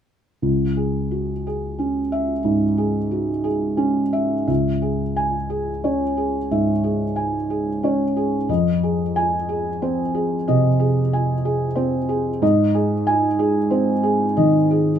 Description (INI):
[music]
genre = neoclassical minimalist piano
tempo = 60 BPM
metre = 4/4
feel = rubato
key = unclear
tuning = A4 = 439 Hz
[part]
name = felt-muted upright piano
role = solo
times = 0.4-15.0 s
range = C#2 to G#5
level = -18 LUFS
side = equal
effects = none
[sound]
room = moderate small room ambience, RT60 0.5 s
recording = minimal, uncompressed stereo recording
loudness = -18 LUFS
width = side -9 dB against mid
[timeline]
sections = 0.4-4.5 A section; 4.5-15.0 B section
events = none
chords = 0.4 C#m; 8.5 Fm7; 12.4 G#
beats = | 0.44 1.45 2.44 3.44 | 4.49 5.51 6.50 7.49 | 8.49 9.48 10.48 11.45 | 12.42 13.38 14.37